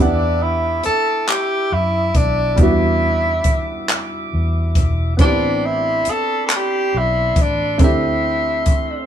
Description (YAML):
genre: slow six-eight R&B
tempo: 46 BPM (dotted quarters)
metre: 6/8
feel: straight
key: E minor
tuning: A4 = 439 Hz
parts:
  - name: warm tenor saxophone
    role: melody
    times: 0.0-9.1 s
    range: D4 to A4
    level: -18 LUFS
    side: equal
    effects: none
  - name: warm baby grand piano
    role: accompaniment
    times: 0.0-9.1 s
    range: G3 to F#5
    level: -23 LUFS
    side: right 3 dB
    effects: none
  - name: tonewheel organ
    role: sustained chords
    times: 0.0-9.1 s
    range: E4 to D6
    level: -28 LUFS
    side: equal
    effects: slow rotary speaker
  - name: vintage muted fingered electric bass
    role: bass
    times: 0.0-8.7 s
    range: E1 to F#2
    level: -21 LUFS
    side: equal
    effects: none
  - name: compact cocktail drum kit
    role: drums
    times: 0.8-8.9 s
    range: handclaps, hi-hat, kick drum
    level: -16 LUFS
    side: equal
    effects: none
room: moderate studio reverb, RT60 0.5 s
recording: band playing live in one room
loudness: -15 LUFS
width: side -9 dB against mid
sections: 0.0-9.1 A section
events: none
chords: 0.0 Em7; 5.2 Am11; 7.8 D9sus4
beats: 1.27 | 2.58 3.88 | 5.19 6.49 | 7.80